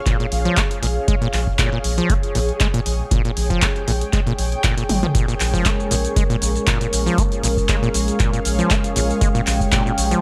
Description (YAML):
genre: acid house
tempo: 118 BPM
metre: 4/4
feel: swing 54% on 16ths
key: Bb dorian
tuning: A4 = 441 Hz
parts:
  - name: granular cloud pad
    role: texture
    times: 0.0-10.2 s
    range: Ab4 to G5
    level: -30 LUFS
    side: equal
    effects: built-in reverb, sidechain pumping
  - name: acid bass, saw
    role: riff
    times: 0.1-10.2 s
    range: Bb2 to Bb3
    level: -26 LUFS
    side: equal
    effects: overdrive, sidechain pumping, tape echo
  - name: electronic kick drum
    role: drums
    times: 0.1-9.8 s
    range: none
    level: -23 LUFS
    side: equal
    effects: none
  - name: punchy analog drum machine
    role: drums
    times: 0.1-10.2 s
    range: handclaps, hi-hat, shaker, toms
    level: -26 LUFS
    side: equal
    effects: none
  - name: round analog bass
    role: bass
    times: 0.3-10.1 s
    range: Ab1 to Bb1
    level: -24 LUFS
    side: equal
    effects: sidechain pumping
  - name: dark analog pad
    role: sustained chords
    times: 5.1-10.2 s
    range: Ab3 to G5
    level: -27 LUFS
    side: equal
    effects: chorus, sidechain pumping
room: light reverb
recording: none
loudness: -19 LUFS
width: mono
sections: 0.0-10.2 A section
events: drum fill 4.9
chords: 0.0 Bbm7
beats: 0.06 0.57 | 1.08 1.59 2.10 2.60 | 3.11 3.62 4.13 4.64 | 5.15 5.66 6.16 6.67 | 7.18 7.69 8.20 8.71 | 9.21 9.72